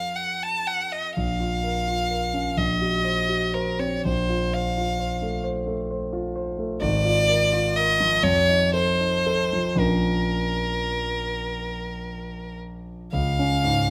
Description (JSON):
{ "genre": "classical, romantic duo for violin and grand piano", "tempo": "35-45 BPM (dotted quarters)", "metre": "6/8", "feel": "rubato", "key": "Bb minor", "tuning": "A4 = 445 Hz", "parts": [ { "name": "clear violin", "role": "melody", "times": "0.0-13.9 s", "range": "Bb4 to A5", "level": "-26 LUFS", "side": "equal", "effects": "none" }, { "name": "dark concert grand piano", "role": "accompaniment", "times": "0.0-13.9 s", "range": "Ab1 to C5", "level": "-28 LUFS", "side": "equal", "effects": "none" } ], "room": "moderate recital hall reverb, RT60 1.4 s", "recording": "close, detailed microphones", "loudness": "-24 LUFS", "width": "mono", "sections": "0.0-13.1 A section", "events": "none", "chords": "0.0 F; 1.2 Bbm; 2.6 Cm7b5/Bb; 4.1 F/Bb; 6.8 Bb7/Ab; 8.2 F7; 9.8 Bbm; 13.1 Db" }